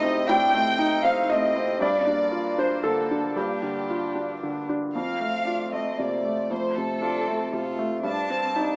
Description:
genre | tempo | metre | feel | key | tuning
neoclassical piano and strings | 116 BPM | 3/4 | rubato | unclear | A4 = 440 Hz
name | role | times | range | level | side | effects
warm chamber violin section | melody | 0.0-8.8 s | G4 to A5 | -30 LUFS | equal | none
rich cello | second line | 0.0-8.8 s | A3 to F4 | -36 LUFS | equal | plate reverb
felt-muted upright piano | accompaniment | 0.0-8.8 s | F2 to G5 | -28 LUFS | equal | none
chorused pulse-width pad | sustained chords | 0.0-8.8 s | G3 to Eb5 | -39 LUFS | equal | none
room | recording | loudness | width
moderate studio reverb, RT60 0.6 s | rough home demo mix, small speaker sound | -25 LUFS | mono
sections
0.0-4.9 A section; 4.9-8.8 A section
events
none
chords
0.0 Adim; 1.8 Gm7; 4.9 F; 8.1 Cmadd9/G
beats
| 0.28 0.79 1.31 | 1.82 2.33 2.84 | 3.36 3.89 4.42 | 4.95 5.47 5.98 | 6.50 7.02 7.53 | 8.05 8.56

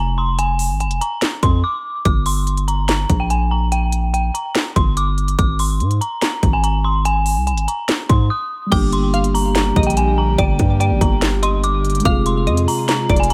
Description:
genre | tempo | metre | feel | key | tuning
hip hop, trap | 144 BPM | 4/4 | half-time | G phrygian | A4 = 440 Hz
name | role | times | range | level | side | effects
dark detuned synth bell | melody | 0.0-13.3 s | G5 to Eb6 | -24 LUFS | equal | chorus, delay
distorted 808-style bass | bass | 0.0-13.3 s | F1 to Ab2 | -20 LUFS | equal | distortion
trap drum kit | drums | 0.4-13.3 s | crash cymbal, handclaps, hi-hat, kick drum, snare drum | -22 LUFS | equal | none
glassy wavetable pluck | second line | 8.7-13.3 s | D5 to G5 | -28 LUFS | equal | chorus, delay
mellow tine electric piano | accompaniment | 8.7-13.3 s | G3 to Ab4 | -25 LUFS | equal | none
airy breathy pad | sustained chords | 8.7-13.3 s | C3 to G4 | -27 LUFS | equal | chorus
room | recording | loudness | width
digital ambience | none | -18 LUFS | mono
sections
0.0-8.7 A section; 8.7-13.3 B section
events
break 1.6-2.1, 8.3-8.7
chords
0.0 Fm; 2.1 Gm; 5.4 Ab; 8.7 Gm; 12.1 Fm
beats
| 0.39 0.80 1.22 1.64 | 2.05 2.47 2.89 3.30 | 3.72 4.14 4.55 4.97 | 5.39 5.80 6.22 6.64 | 7.05 7.47 7.89 8.30 | 8.72 9.14 9.55 9.97 | 10.39 10.80 11.22 11.64 | 12.05 12.47 12.89 13.30

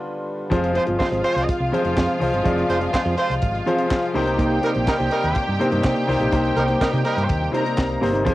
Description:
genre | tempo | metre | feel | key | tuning
disco | 124 BPM | 4/4 | straight | C minor | A4 = 441 Hz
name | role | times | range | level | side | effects
clear grand piano | accompaniment | 0.0-8.3 s | C3 to D5 | -23 LUFS | left 2 dB | cassette tape
percussive tonewheel organ | sustained chords | 0.0-8.3 s | C3 to F4 | -31 LUFS | right 1 dB | none
clear studio string section | second line | 0.5-8.3 s | F4 to Bb5 | -26 LUFS | equal | cassette tape
mellow electric guitar | accompaniment | 0.5-8.3 s | Bb3 to C5 | -26 LUFS | right 3 dB | cassette tape
hollow-body short-scale fingered electric bass | bass | 0.5-8.3 s | F1 to C3 | -26 LUFS | equal | none
tight funk drum kit | drums | 0.5-8.3 s | handclaps, hi-hat, kick drum, snare drum | -25 LUFS | equal | cassette tape
warm horn section | stabs | 0.8-7.3 s | G3 to C5 | -23 LUFS | right 2 dB | cassette tape
room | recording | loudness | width
little or no reverb | home recording on cassette | -18 LUFS | side -16 dB against mid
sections
0.5-8.3 A section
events
grand piano fill 0.0-0.5; band accent 0.0-0.5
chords
0.0 G7; 0.5 Fm; 4.1 Cm7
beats
0.03 | 0.51 1.00 1.48 1.97 | 2.45 2.94 3.42 3.91 | 4.39 4.88 5.36 5.84 | 6.33 6.81 7.29 7.78 | 8.26

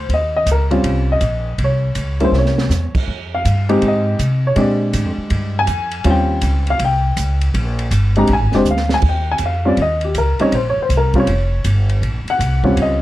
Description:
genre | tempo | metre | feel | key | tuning
jazz piano trio | 161 BPM | 4/4 | swing 66% on 8ths | Eb mixolydian | A4 = 440 Hz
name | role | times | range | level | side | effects
warm upright piano | melody | 0.0-13.0 s | G3 to Bb5 | -17 LUFS | left 1 dB | none
upright bass | bass | 0.0-13.0 s | F1 to C3 | -17 LUFS | equal | none
open jazz drum kit | drums | 0.1-12.9 s | crash cymbal, hi-hat, kick drum, ride cymbal, snare drum | -25 LUFS | right 1 dB | none
room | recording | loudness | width
light reverb | dark, warm production | -14 LUFS | side -15 dB against mid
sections
0.0-9.0 A section; 9.0-13.0 A section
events
upright piano solo 0.0-13.0; drum fill 2.3-2.7, 8.7-9.0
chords
0.1 Eb13; 1.6 C7b9; 3.1 Fm7; 4.6 Bb13; 6.1 Eb13; 6.8 C5; 7.5 Bb13; 9.0 Eb13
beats
| 0.09 0.47 0.84 1.21 | 1.59 1.96 2.33 2.70 | 3.08 3.45 3.82 4.20 | 4.57 4.94 5.31 5.69 | 6.06 6.43 6.80 7.18 | 7.55 7.92 8.29 8.67 | 9.04 9.41 9.78 10.16 | 10.53 10.90 11.28 11.65 | 12.02 12.39 12.77

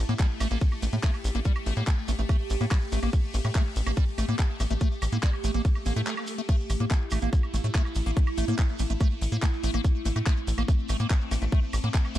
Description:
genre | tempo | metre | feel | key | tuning
psychedelic trance | 143 BPM | 4/4 | straight | A phrygian | A4 = 442 Hz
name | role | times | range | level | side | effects
evolving wavetable pad | sustained chords | 0.0-12.2 s | A3 to G4 | -36 LUFS | right 1 dB | chorus, built-in reverb, phaser, sidechain pumping
tight sequencer bass | bass | 0.0-12.2 s | A1 to A2 | -26 LUFS | equal | none
liquid acid bass | riff | 0.1-12.2 s | G3 to Bb3 | -34 LUFS | moving between left 4 dB and right 6 dB | phaser, auto-pan, sidechain pumping, digital delay
garage drum kit | drums | 0.1-12.2 s | crash cymbal, handclaps, hi-hat, woodblock | -37 LUFS | equal | none
shekere | percussion | 0.1-12.2 s | none | -43 LUFS | right 4 dB | none
electronic kick drum | drums | 0.2-12.0 s | none | -24 LUFS | equal | none
swell | sound effects | 5.8-6.5 s | none | -38 LUFS | right 3 dB | none
room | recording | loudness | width
digital ambience | dark, warm production | -24 LUFS | side -13 dB against mid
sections
0.0-12.2 A section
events
swell 5.8-6.5; break 6.1-6.5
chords
0.0 A5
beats
0.19 0.61 1.03 | 1.45 1.87 2.29 2.71 | 3.13 3.55 3.97 4.39 | 4.81 5.23 5.65 6.07 | 6.49 6.91 7.33 7.75 | 8.17 8.59 9.01 9.43 | 9.85 10.26 10.68 11.10 | 11.52 11.94

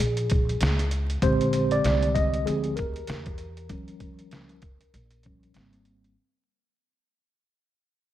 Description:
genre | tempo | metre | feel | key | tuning
hip hop, jazz-hop | 97 BPM | 4/4 | swing 59% on 16ths | unclear | A4 = 440 Hz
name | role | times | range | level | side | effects
mellow tine electric piano | accompaniment | 0.0-6.1 s | D3 to Eb5 | -27 LUFS | equal | medium stereo tremolo
upright bass | bass | 0.0-6.1 s | Ab1 to Fb2 | -28 LUFS | equal | none
trip hop sampler-style drum kit | drums | 0.0-6.2 s | hi-hat, kick drum, snare drum | -28 LUFS | equal | none
room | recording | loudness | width
light reverb | vinyl crackle | -22 LUFS | side -13 dB against mid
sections
0.0-6.2 A section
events
fade-out 0.0-6.2; tine electric piano solo 0.0-6.2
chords
0.0 Bbm7; 1.2 Bb13; 3.7 Eb9; 5.6 Abmaj9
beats
0.60 | 1.22 1.84 2.46 3.08 | 3.69 4.31 4.93 5.55

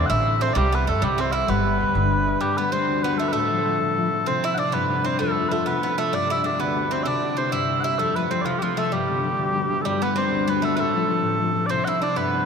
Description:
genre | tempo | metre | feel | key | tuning
celtic folk, Celtic jig | 129 BPM (dotted quarters) | 6/8 | straight | G mixolydian | A4 = 440 Hz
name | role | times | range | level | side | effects
mellow small bagpipes | melody | 0.0-12.5 s | F4 to F#5 | -23 LUFS | right 1 dB | none
Irish bouzouki | second line | 0.0-12.5 s | F3 to E4 | -28 LUFS | right 4 dB | none
concert harp | accompaniment | 0.0-12.5 s | G1 to E5 | -25 LUFS | left 5 dB | none
upright bass | bass | 0.0-2.3 s | G1 to G2 | -24 LUFS | right 1 dB | none
room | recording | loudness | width
wet cathedral reverb, RT60 5.4 s | in a vast, echoing space | -20 LUFS | side -6 dB against mid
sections
0.0-2.4 A section; 2.4-9.8 B section; 9.8-12.5 B section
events
none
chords
0.0 Am; 0.6 C; 1.5 G; 2.4 Gadd9; 3.3 F/A; 4.3 Cadd9; 5.2 F; 6.1 Gsus2; 7.1 C; 8.0 F; 8.9 G; 9.8 Gadd9; 10.8 F/A; 11.7 Cadd9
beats
0.09 | 0.56 1.02 | 1.49 1.95 | 2.42 2.88 | 3.35 3.81 | 4.28 4.74 | 5.20 5.67 | 6.13 6.60 | 7.06 7.52 | 7.99 8.45 | 8.91 9.38 | 9.84 10.31 | 10.77 11.23 | 11.70 12.16

